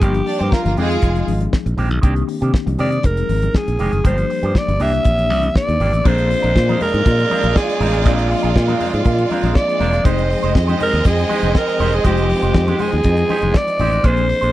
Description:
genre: disco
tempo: 120 BPM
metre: 4/4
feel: straight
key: F dorian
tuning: A4 = 440 Hz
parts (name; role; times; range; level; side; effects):
- breathy alto saxophone; melody; 0.0-14.5 s; F4 to E5; -20 LUFS; right 1 dB; none
- electric guitar with an envelope filter; accompaniment; 0.0-14.5 s; Eb3 to C5; -25 LUFS; right 4 dB; none
- mellow tine electric piano; accompaniment; 0.0-14.5 s; Eb3 to Ab4; -25 LUFS; left 6 dB; medium stereo tremolo
- modern bright fingered electric bass; bass; 0.0-14.5 s; E1 to C3; -18 LUFS; equal; none
- damped 70s drum kit; drums; 0.0-14.5 s; crash cymbal, hi-hat, kick drum, snare drum; -15 LUFS; equal; none
- congas; percussion; 0.2-14.3 s; none; -28 LUFS; left 4 dB; none
- dark studio violin section; second line; 0.3-1.2, 6.1-14.0 s; Ab3 to Eb5; -23 LUFS; right 3 dB; none
room: studio ambience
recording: dry, close 1970s-style studio recording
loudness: -14 LUFS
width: side -15 dB against mid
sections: 0.0-6.1 A section; 6.1-14.5 B section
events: none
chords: 0.0 Gm7; 0.8 Fm9; 2.0 Cm9; 3.0 Fm9; 4.0 Gm7; 4.8 C9; 6.1 Bb9; 10.1 Fm9

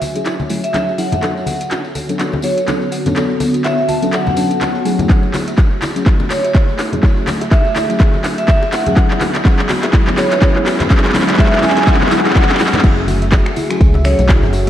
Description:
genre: deep house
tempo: 124 BPM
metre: 4/4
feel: swing 58% on 16ths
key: F# minor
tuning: A4 = 440 Hz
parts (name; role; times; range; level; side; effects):
- warm analog pad; sustained chords; 0.0-14.7 s; D3 to B5; -26 LUFS; equal; chorus, sidechain pumping
- soft round pluck; arpeggios; 0.0-14.7 s; E4 to A5; -28 LUFS; right 1 dB; none
- deep mellow chord stab; stabs; 0.0-14.7 s; F#3 to A4; -21 LUFS; left 1 dB; chorus, phaser, sidechain pumping, tape echo
- deep house drum kit; drums; 0.0-14.7 s; crash cymbal, finger snaps, handclaps, hi-hat; -19 LUFS; equal; overdrive
- congas and bongos; percussion; 0.0-14.7 s; none; -25 LUFS; left 2 dB; none
- tambourine; percussion; 0.0-14.6 s; none; -36 LUFS; left 3 dB; none
- granular cloud pad; texture; 0.0-12.8 s; B3 to G#5; -25 LUFS; equal; built-in reverb, sidechain pumping
- vibraphone with hard mallets; melody; 0.6-14.2 s; C#5 to A5; -20 LUFS; equal; tape echo
- electronic kick drum; drums; 5.1-14.4 s; none; -12 LUFS; equal; none
- organ-like FM bass; bass; 12.8-14.7 s; F#1 to C#2; -15 LUFS; equal; sidechain pumping
- natural country drum kit; drums; 12.8-14.7 s; hi-hat, ride cymbal, snare drum; -37 LUFS; right 1 dB; none
room: wet lush hall reverb, RT60 2.1 s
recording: dreamy mix soaked in reverb, cassette tape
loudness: -12 LUFS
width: side -11 dB against mid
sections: 0.0-12.8 A section; 12.8-14.7 B section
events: build-up 0.0-12.8; drum fill 0.0-12.8; filter sweep on synth stab 0.0-12.8; drop 12.8-14.7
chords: 0.0 F#m9; 1.2 Bm9; 4.9 F#m9; 9.0 E; 12.8 F#m9

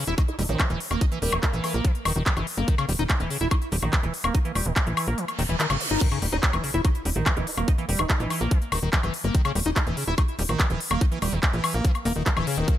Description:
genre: psychedelic trance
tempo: 144 BPM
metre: 4/4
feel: straight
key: unclear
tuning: A4 = 441 Hz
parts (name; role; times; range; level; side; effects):
- liquid acid bass; riff; 0.0-12.8 s; Db3 to Fb4; -29 LUFS; moving between left 5 dB and right 5 dB; chorus, auto-pan, sidechain pumping, tape echo
- tight sequencer bass; bass; 0.1-12.6 s; Eb1 to Bb1; -27 LUFS; equal; none
- big-room dance drum kit; drums; 0.1-12.8 s; crash cymbal, handclaps, hi-hat, woodblock; -28 LUFS; left 2 dB; overdrive, small room ambience
- electronic kick drum; drums; 0.2-12.8 s; none; -22 LUFS; equal; small room ambience
- vowel-sweep wobble bass; second line; 0.3-1.8, 6.3-8.3 s; Bb3 to Eb4; -36 LUFS; right 3 dB; ensemble chorus, sidechain pumping, high-pass filter, dub echo
- reverse cymbal, zap and sub drop; sound effects; 5.3-7.7 s; none; -33 LUFS; right 3 dB; none
room: little or no reverb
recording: none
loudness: -22 LUFS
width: side -12 dB against mid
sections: 0.0-6.0 A section; 6.0-12.8 B section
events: kick drops out 5.2-6.0; reverse cymbal 5.3-6.0; drop 6.0-12.8; impact 6.0-7.7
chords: 0.0 Eb5

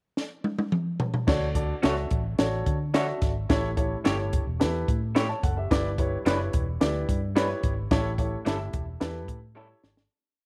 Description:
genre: uptempo 1960s-style soul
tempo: 109 BPM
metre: 4/4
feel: straight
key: D major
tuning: A4 = 441 Hz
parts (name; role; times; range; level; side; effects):
- compact cocktail drum kit; drums; 0.2-10.1 s; crash cymbal, hi-hat, kick drum, snare drum, toms; -29 LUFS; equal; none
- warm baby grand piano; accompaniment; 1.3-9.9 s; G2 to B5; -33 LUFS; equal; none
- vintage muted fingered electric bass; bass; 1.3-10.1 s; E1 to D3; -33 LUFS; equal; none
- electric guitar through a small old amp; stabs; 1.8-9.7 s; G3 to C#5; -35 LUFS; equal; none
room: light reverb, small room reverb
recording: none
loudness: -27 LUFS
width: mono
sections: 0.0-1.3 pickup bar; 1.3-10.1 verse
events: drum fill 0.2-1.3, 9.6-10.1; fade-out 7.9-10.1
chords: 0.0 N.C.; 1.3 Dmaj7; 3.5 A7; 5.7 G6; 7.9 A7

